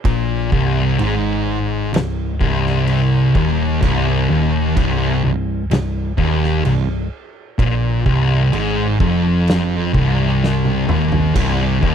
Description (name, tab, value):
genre	stoner and doom metal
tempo	64 BPM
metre	4/4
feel	straight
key	C minor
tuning	A4 = 440 Hz
part	thick fuzz guitar	riff	0.0-11.9 s	C2 to Bb2	-20 LUFS	right 10 dB	distortion
part	oversized low-tuned drum kit	drums	0.0-11.9 s	crash cymbal, kick drum, snare drum, toms	-22 LUFS	equal	none
part	thick fuzz guitar	riff	0.1-11.9 s	C2 to Bb2	-18 LUFS	left 8 dB	distortion
part	hollow-body short-scale picked electric bass	bass	0.1-11.9 s	C1 to Bb1	-22 LUFS	equal	overdrive
room	light reverb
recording	dry, close 1970s-style studio recording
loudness	-15 LUFS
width	side -8 dB against mid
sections	0.0-11.9 A section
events	drum fill 10.4-11.4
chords	0.0 Cm